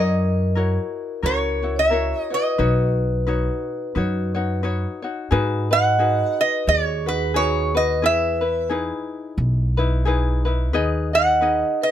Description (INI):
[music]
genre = Hawaiian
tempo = 88 BPM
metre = 4/4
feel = swing 58% on 8ths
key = B major, G# minor from 5.3 s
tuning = A4 = 440 Hz
[part]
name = lap resonator guitar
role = melody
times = 0.0-11.9 s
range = B4 to F#5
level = -21 LUFS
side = right 1 dB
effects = none
[part]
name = vibraphone with soft mallets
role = second line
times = 0.0-11.9 s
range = G#4 to D#5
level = -25 LUFS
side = right 1 dB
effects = none
[part]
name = ukulele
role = accompaniment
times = 0.0-11.9 s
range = D#4 to D#5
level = -26 LUFS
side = left 4 dB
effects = none
[part]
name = upright bass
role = bass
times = 0.0-11.6 s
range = B1 to G#2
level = -22 LUFS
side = equal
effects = none
[sound]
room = little or no reverb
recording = close, detailed microphones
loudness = -18 LUFS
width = side -10 dB against mid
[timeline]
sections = 0.0-5.3 A section; 5.3-11.9 B section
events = none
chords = 0.0 F#7; 2.6 Badd9; 5.3 G#m7; 8.0 Emaj7; 10.7 G#m/D#